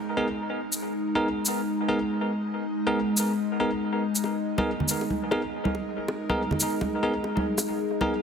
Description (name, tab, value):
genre	deep dubstep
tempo	140 BPM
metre	4/4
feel	swing 58% on 16ths, half-time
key	G# minor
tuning	A4 = 441 Hz
part	overtone-sweeping drone	sustained chords	0.0-8.2 s	G#3 to D#5	-28 LUFS	left 1 dB	chorus, built-in reverb
part	downlifter	sound effects	0.0-0.8 s	none	-53 LUFS	right 1 dB	none
part	bell-like tine electric piano	stabs	0.2-8.1 s	B3 to A#4	-29 LUFS	equal	medium stereo tremolo, dub echo
part	shaker	drums	0.7-7.7 s	none	-28 LUFS	equal	overdrive
part	bongos and congas	percussion	4.2-8.1 s	none	-30 LUFS	right 1 dB	dub echo
room	moderate echo chamber reverb, RT60 2.0 s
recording	dense, heavily limited modern master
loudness	-24 LUFS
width	side -7 dB against mid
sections	0.0-8.2 A section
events	none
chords	0.0 G#madd9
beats	0.39 | 0.81 1.24 1.67 2.10 | 2.53 2.96 3.38 3.81 | 4.24 4.67 5.10 5.53 | 5.96 6.38 6.81 7.24 | 7.67 8.10